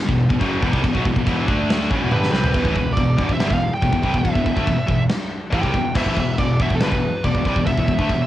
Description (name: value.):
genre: heavy metal.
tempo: 140 BPM.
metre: 4/4.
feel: straight.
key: E minor.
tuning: A4 = 440 Hz.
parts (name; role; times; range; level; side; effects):
fuzz guitar; riff; 0.1-8.2 s; E2 to D4; -27 LUFS; right 2 dB; none.
scooped high-gain guitar; riff; 0.1-8.2 s; E2 to D4; -27 LUFS; right 7 dB; distortion.
tight distorted guitar; riff; 0.1-8.2 s; E2 to D4; -22 LUFS; left 4 dB; distortion.
fuzz picked electric bass; bass; 0.1-8.3 s; E1 to D2; -26 LUFS; equal; overdrive.
big rock drum kit; drums; 0.1-8.2 s; china cymbal, crash cymbal, kick drum, snare drum, toms; -22 LUFS; equal; cassette tape.
high-gain lead guitar; melody; 2.1-8.3 s; A4 to G5; -25 LUFS; right 2 dB; distortion, cassette tape.
room: little or no reverb.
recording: home recording on cassette.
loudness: -17 LUFS.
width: side -13 dB against mid.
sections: 0.0-2.5 A section; 2.5-8.3 B section.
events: drum fill 2.1-2.5.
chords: 0.0 Em; 1.5 D5; 1.9 Em.